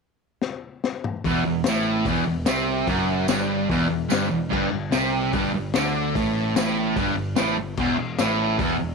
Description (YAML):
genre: garage rock duo or trio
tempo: 147 BPM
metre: 4/4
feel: straight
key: E minor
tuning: A4 = 440 Hz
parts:
  - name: crunchy breakbeat drum kit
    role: drums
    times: 0.4-8.7 s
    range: crash cymbal, hi-hat, kick drum, snare drum, toms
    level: -28 LUFS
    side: left 6 dB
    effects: none
  - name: fuzz guitar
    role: riff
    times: 1.2-8.9 s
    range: E2 to D3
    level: -22 LUFS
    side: right 1 dB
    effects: distortion
  - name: overdriven picked electric bass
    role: bass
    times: 1.2-8.9 s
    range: E1 to D2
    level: -31 LUFS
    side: equal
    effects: none
  - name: tambourine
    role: percussion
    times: 1.7-8.3 s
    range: none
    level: -35 LUFS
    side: right 17 dB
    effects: none
room: light reverb, small room reverb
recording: 1960s-style stereo with parts hard left and right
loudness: -21 LUFS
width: side -4 dB against mid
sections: 0.0-1.2 A section; 1.2-8.9 B section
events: drum fill 0.4-1.2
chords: 0.0 N.C.; 1.2 Em; 4.5 G5; 7.8 N.C.